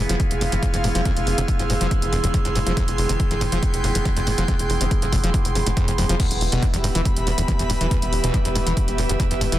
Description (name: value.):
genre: driving peak-time techno.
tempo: 140 BPM.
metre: 4/4.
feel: straight.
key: unclear.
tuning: A4 = 439 Hz.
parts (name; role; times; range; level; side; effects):
tight sequencer bass; bass; 0.0-9.6 s; E1 to F1; -24 LUFS; equal; sidechain pumping.
overtone-sweeping drone; drone; 0.0-9.6 s; E3 to B3; -30 LUFS; right 2 dB; chorus, built-in reverb, sidechain pumping.
airy breathy pad; texture; 0.0-9.6 s; B3 to C6; -27 LUFS; equal; chorus, sidechain pumping.
screaming distorted acid line; riff; 0.1-9.6 s; E2 to F3; -26 LUFS; equal; distortion, lush chorus, sidechain pumping, digital delay.
punchy analog drum machine; drums; 0.1-9.6 s; crash cymbal, hi-hat; -28 LUFS; right 1 dB; none.
electronic kick drum; drums; 0.2-9.3 s; none; -22 LUFS; equal; none.
room: light reverb.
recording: dense, heavily limited modern master, faint mains hum.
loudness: -18 LUFS.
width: side -14 dB against mid.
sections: 0.0-9.6 A section.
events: none.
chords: 0.0 Fm; 6.2 Em.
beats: 0.20 0.63 | 1.05 1.48 1.91 2.34 | 2.77 3.20 3.63 4.05 | 4.48 4.91 5.34 5.77 | 6.20 6.63 7.05 7.48 | 7.91 8.34 8.77 9.20.